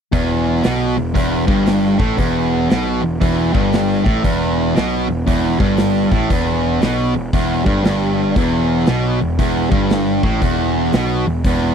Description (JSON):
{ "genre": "blues rock power trio and southern rock", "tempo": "117 BPM", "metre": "4/4", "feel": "swing 64% on 8ths", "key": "unclear", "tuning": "A4 = 440 Hz", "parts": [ { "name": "distorted electric guitar", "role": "riff", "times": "0.1-11.7 s", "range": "E2 to B2", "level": "-16 LUFS", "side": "equal", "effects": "overdrive" }, { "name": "fuzz picked electric bass", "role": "bass", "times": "0.1-11.7 s", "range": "E1 to B1", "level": "-22 LUFS", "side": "equal", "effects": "overdrive" }, { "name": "big rock drum kit", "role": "drums", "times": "0.1-11.6 s", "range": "hi-hat, kick drum, snare drum", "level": "-19 LUFS", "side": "equal", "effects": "none" } ], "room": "little or no reverb", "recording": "dry, close 1970s-style studio recording", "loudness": "-14 LUFS", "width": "side -7 dB against mid", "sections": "0.1-11.7 A section", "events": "none", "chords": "0.1 E5" }